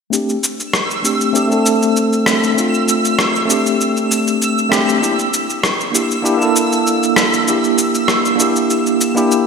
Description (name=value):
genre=sunset chillout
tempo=98 BPM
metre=4/4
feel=straight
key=F major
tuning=A4 = 444 Hz
part: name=tine electric piano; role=accompaniment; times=0.1-9.5 s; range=A3 to A4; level=-15 LUFS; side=moving between left 3 dB and right 4 dB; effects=medium stereo tremolo, auto-pan, low-pass filter, ping-pong delay
part: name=electronic shaker and rim click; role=drums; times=0.1-9.4 s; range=none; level=-18 LUFS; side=left 1 dB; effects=studio reverb, gated reverb
part: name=twinkling granular texture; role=texture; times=0.7-9.5 s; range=E6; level=-22 LUFS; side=right 3 dB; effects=built-in reverb
room=wet lush hall reverb, RT60 3.1 s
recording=bright 1980s-style digital production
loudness=-13 LUFS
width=side -5 dB against mid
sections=0.1-9.5 A section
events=filter sweep on tine electric piano 0.1-9.5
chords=0.1 F6; 5.0 Gm69/Bb